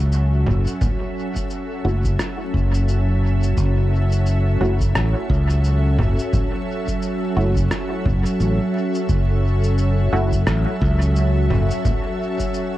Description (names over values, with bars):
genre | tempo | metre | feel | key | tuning
ambient dub | 87 BPM | 4/4 | swing 58% on 16ths | F# minor | A4 = 440 Hz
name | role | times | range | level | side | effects
soft additive organ-like pad | sustained chords | 0.0-12.8 s | F#3 to E5 | -24 LUFS | equal | ensemble chorus, built-in reverb
modern bright fingered electric bass | bass | 0.0-11.7 s | F#1 to C#2 | -18 LUFS | equal | none
electronic shaker, congas and rim click | drums | 0.1-12.7 s | none | -26 LUFS | equal | dub echo
electronic kick drum | drums | 0.8-12.5 s | none | -25 LUFS | equal | none
filtered dub chord stab | stabs | 1.8-10.3 s | A3 to F#4 | -29 LUFS | right 1 dB | chorus, dub echo
backwards swelling texture | texture | 9.6-12.8 s | E5 | -35 LUFS | left 1 dB | built-in reverb
room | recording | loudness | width
digital ambience | echo-heavy mix, vinyl crackle | -17 LUFS | side -15 dB against mid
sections
0.0-12.8 A section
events
none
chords
0.0 F#m7